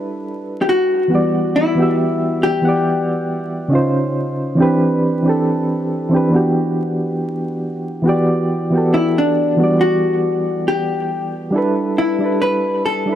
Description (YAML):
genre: hip hop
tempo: 69 BPM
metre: 4/4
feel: swing 56% on 16ths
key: E minor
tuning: A4 = 440 Hz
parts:
  - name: soft electric-piano-like synth keys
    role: accompaniment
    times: 0.0-13.2 s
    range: C#3 to F#5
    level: -16 LUFS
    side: right 1 dB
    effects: chorus, tremolo, cassette tape
  - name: vintage hollow-body jazz guitar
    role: melody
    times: 0.6-13.2 s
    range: D4 to B4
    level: -18 LUFS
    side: left 2 dB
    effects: tape echo
room: moderate plate reverb, RT60 3.4 s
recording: dark, warm production, vinyl crackle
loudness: -15 LUFS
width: side -10 dB against mid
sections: 0.0-8.0 A section; 8.0-13.2 B section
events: none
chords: 0.0 G69; 1.1 Em7; 3.7 C#maj7; 4.6 Cmaj7/E; 6.3 Em9; 8.0 Em7; 11.5 G69